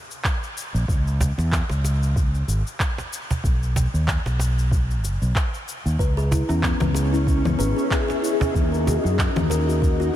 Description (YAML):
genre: organic downtempo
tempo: 94 BPM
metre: 4/4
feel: swing 56% on 16ths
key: C# dorian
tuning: A4 = 439 Hz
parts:
  - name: electronic shaker, handclaps and congas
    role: drums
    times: 0.1-10.1 s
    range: none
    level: -29 LUFS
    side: left 1 dB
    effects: none
  - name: electronic kick drum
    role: drums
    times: 0.2-10.0 s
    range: none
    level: -23 LUFS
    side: equal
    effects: overdrive
  - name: fretless electric bass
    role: bass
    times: 0.7-10.1 s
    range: F#1 to F#2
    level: -22 LUFS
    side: equal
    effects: sidechain pumping
  - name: cajon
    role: percussion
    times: 1.2-9.6 s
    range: none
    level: -29 LUFS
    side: right 2 dB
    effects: none
  - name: granular cloud pad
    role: sustained chords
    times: 6.8-10.2 s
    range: C#4 to F#5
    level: -26 LUFS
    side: left 1 dB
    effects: built-in reverb, sidechain pumping
  - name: kalimba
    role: arpeggios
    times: 6.0-10.2 s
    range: A#3 to B4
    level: -25 LUFS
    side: left 2 dB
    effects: diffuse ambient delay
room: light reverb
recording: none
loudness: -20 LUFS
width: side -12 dB against mid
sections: 0.0-10.2 A section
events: none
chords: 0.0 N.C.; 3.4 B; 6.0 C#m7; 8.5 D#m7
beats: 0.25 | 0.89 1.52 2.16 2.80 | 3.44 4.08 4.71 5.35 | 5.99 6.63 7.27 7.91 | 8.54 9.18 9.82